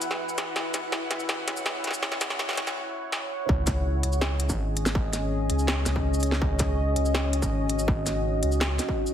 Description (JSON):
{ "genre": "half-time drum and bass", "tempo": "164 BPM", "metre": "4/4", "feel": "half-time", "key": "C# minor", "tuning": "A4 = 440 Hz", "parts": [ { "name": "deep dark ambient pad", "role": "sustained chords", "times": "0.0-9.1 s", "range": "C#4 to F#5", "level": "-30 LUFS", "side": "equal", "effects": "chorus, built-in reverb, sidechain pumping" }, { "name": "saturated sub bass", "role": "bass", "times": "0.0-8.8 s", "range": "E1 to C#2", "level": "-26 LUFS", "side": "equal", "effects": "high-pass filter" }, { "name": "industrial drum kit", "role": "drums", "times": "0.0-9.1 s", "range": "hi-hat, shaker, snare drum", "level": "-29 LUFS", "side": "equal", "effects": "high-pass filter on hats, high-pass filter on perc, high-pass filter on snare" }, { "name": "electronic kick drum", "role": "drums", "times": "3.5-9.0 s", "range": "none", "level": "-27 LUFS", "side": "equal", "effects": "distortion" } ], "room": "moderate digital room reverb, RT60 1.1 s", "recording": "heavily compressed radio sound, multiband compression, high-pass filter", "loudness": "-24 LUFS", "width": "side -9 dB against mid", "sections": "0.0-3.5 A section; 3.5-9.1 B section", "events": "build-up 0.0-3.5; drum fill 0.0-2.8, 3.1-3.5; break 2.8-3.5; drop 3.5-9.1", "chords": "0.0 Esus2; 3.5 C#sus2" }